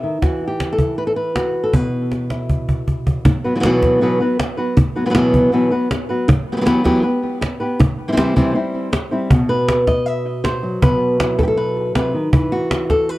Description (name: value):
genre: flamenco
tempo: 158 BPM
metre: 4/4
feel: straight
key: unclear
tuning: A4 = 440 Hz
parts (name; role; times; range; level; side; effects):
- flamenco guitar; melody; 0.0-13.2 s; B2 to E5; -17 LUFS; equal; tape echo
- cajon; percussion; 0.0-13.1 s; none; -17 LUFS; equal; none
room: moderate studio reverb, RT60 0.5 s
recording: dark, warm production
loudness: -15 LUFS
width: side -18 dB against mid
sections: 0.0-3.3 A section; 3.3-9.3 B section; 9.3-13.2 C section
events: drum fill 2.1-3.3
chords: 0.2 N.C.; 1.7 Bsus4; 6.3 Emadd9; 7.8 C; 9.3 Bsus4; 12.3 Esus2